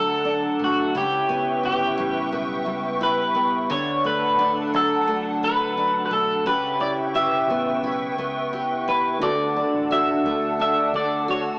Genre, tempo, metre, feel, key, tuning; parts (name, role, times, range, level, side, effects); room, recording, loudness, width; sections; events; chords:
indie pop; 87 BPM; 4/4; swing 55% on 16ths; D major; A4 = 440 Hz
electric guitar through a small old amp; melody; 0.0-11.4 s; F#4 to E5; -22 LUFS; equal; analog chorus, cassette tape, tape echo
picked steel-string acoustic guitar; accompaniment; 0.0-11.6 s; C#3 to G4; -26 LUFS; equal; lush chorus, warbly pitch drift, cassette tape
hollow soft pad; sustained chords; 0.0-11.6 s; D4 to C#6; -28 LUFS; equal; ensemble chorus, cassette tape
vintage muted fingered electric bass; bass; 0.0-11.5 s; G1 to D2; -40 LUFS; equal
tine electric piano; accompaniment; 9.2-11.6 s; A3 to A4; -29 LUFS; right 1 dB; overdrive, fast stereo tremolo, cassette tape
wet spring reverb, RT60 2.8 s; home recording on cassette, small speaker sound; -20 LUFS; side -28 dB against mid
0.0-11.6 A section
0.0 D; 0.9 C#m7b5; 3.7 D; 6.5 C#m7b5; 9.2 D